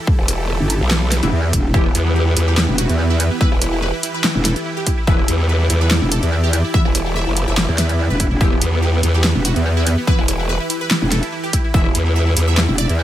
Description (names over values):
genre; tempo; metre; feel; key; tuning
heavy wobble dubstep; 144 BPM; 4/4; swing 54% on 16ths, half-time; E minor; A4 = 439 Hz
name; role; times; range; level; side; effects
supersaw pad; sustained chords; 0.0-13.0 s; E3 to E5; -27 LUFS; right 2 dB; sidechain pumping
electronic kick drum; drums; 0.1-11.8 s; none; -16 LUFS; equal; overdrive
growl bass; bass; 0.2-12.7 s; E1 to E2; -17 LUFS; equal; chorus, overdrive
big-room dance drum kit; drums; 0.3-13.0 s; handclaps, hi-hat, snare drum; -19 LUFS; equal; overdrive
metallic wobble bass; bass; 0.6-13.0 s; E1 to E2; -16 LUFS; equal; chorus, overdrive
orchestra-hit-like synth stab; stabs; 1.2-11.9 s; E3 to E4; -25 LUFS; left 2 dB; built-in reverb
wide unison pluck; melody; 1.7-13.0 s; B3 to E5; -24 LUFS; right 1 dB; phaser, ping-pong delay
room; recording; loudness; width
little or no reverb; none; -14 LUFS; side -12 dB against mid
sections
0.0-13.0 A section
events
none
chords
0.0 Em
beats
| 0.07 0.49 0.91 1.32 | 1.74 2.16 2.57 2.99 | 3.41 3.82 4.24 4.66 | 5.07 5.49 5.91 6.32 | 6.74 7.16 7.57 7.99 | 8.41 8.82 9.24 9.66 | 10.07 10.49 10.91 11.32 | 11.74 12.16 12.57 12.99